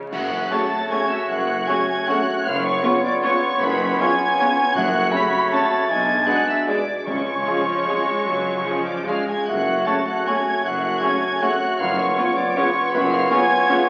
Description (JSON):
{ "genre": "classical, orchestral ballroom waltz", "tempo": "142-171 BPM", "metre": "3/4", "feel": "rubato", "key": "F# minor", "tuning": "A4 = 440 Hz", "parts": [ { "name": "rich chamber viola section", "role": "accompaniment", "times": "0.0-13.8 s", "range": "C#3 to D4", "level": "-32 LUFS", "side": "equal", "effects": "none" }, { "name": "rich studio violin section", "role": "melody", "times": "0.1-13.9 s", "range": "B5 to B6", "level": "-30 LUFS", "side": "equal", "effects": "none" }, { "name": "clear clarinet", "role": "second line", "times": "0.1-13.9 s", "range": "D4 to F#4", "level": "-32 LUFS", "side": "equal", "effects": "none" }, { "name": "clear oboe", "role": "second line", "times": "0.1-13.9 s", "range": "C#5 to D5", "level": "-28 LUFS", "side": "equal", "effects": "none" }, { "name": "mellow hollow silver concert flute", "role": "second line", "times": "0.1-13.8 s", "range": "B4 to B5", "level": "-27 LUFS", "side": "equal", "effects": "none" }, { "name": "mellow bassoon", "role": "accompaniment", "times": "0.1-13.9 s", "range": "G#3 to B3", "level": "-29 LUFS", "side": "equal", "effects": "none" }, { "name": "rich symphonic double bass section", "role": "bass", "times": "0.1-13.2 s", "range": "F#1 to C#2", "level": "-44 LUFS", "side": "equal", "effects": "none" }, { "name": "warm chamber cello section", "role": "bass", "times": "0.1-13.2 s", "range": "F#2 to C#3", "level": "-34 LUFS", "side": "equal", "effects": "none" }, { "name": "warm tuba", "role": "bass", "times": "0.1-13.2 s", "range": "F#1 to C#2", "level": "-35 LUFS", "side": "equal", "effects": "none" }, { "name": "clash cymbals and concert bass drum", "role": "percussion", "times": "0.1-0.9 s", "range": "none", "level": "-38 LUFS", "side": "equal", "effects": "none" }, { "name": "rich studio violin section", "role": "second line", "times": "0.5-13.8 s", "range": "D4 to C#5", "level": "-37 LUFS", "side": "equal", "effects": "none" }, { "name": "dark trombone section", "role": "sustained chords", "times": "0.5-13.8 s", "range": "B2 to B3", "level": "-34 LUFS", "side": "equal", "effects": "none" }, { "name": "warm French horn section", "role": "sustained chords", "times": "0.5-13.8 s", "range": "C#4 to F#4", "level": "-32 LUFS", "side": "equal", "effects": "none" }, { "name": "warm trumpet", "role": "stabs", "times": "0.5-13.8 s", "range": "G#4 to C#5", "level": "-30 LUFS", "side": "equal", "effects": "none" }, { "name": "timpani", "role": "percussion", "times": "4.8-7.6, 11.8-12.3 s", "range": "F#2 to C#3", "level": "-37 LUFS", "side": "equal", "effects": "none" } ], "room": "wet recital hall reverb, RT60 1.5 s", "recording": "very old 78 rpm record, vinyl crackle", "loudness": "-20 LUFS", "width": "mono", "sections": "0.1-13.9 A section", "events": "band accent 0.1-0.5", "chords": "0.1 F#m; 2.5 C#7/F#; 4.8 F#m; 5.9 G#dim/B; 7.1 C#; 9.5 F#m; 11.8 C#7/F#" }